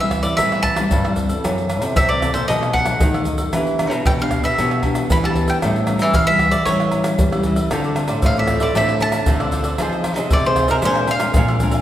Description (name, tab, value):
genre	samba and choro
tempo	115 BPM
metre	4/4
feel	straight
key	unclear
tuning	A4 = 439 Hz
part	bowl-back mandolin	melody	0.0-11.6 s	Bb4 to B5	-20 LUFS	equal	none
part	nylon-string guitar	accompaniment	0.0-11.8 s	F#2 to A4	-24 LUFS	left 2 dB	none
part	nylon-string guitar	bass	0.0-11.8 s	F#2 to G3	-21 LUFS	equal	none
part	egg shaker, pandeiro, tamborim, agogo bells and surdo	percussion	0.1-11.8 s	none	-20 LUFS	equal	none
part	cavaquinho	accompaniment	7.7-11.8 s	D4 to Ab5	-27 LUFS	right 2 dB	none
room	wet scoring stage reverb, RT60 1.6 s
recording	recorded in a church or concert hall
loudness	-16 LUFS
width	side -12 dB against mid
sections	0.0-11.8 A section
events	none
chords	0.0 Am7; 1.4 F#m7b5; 2.5 B7; 3.5 Em7; 5.6 A7; 7.7 Dm7; 9.8 Fm7; 10.8 Bb9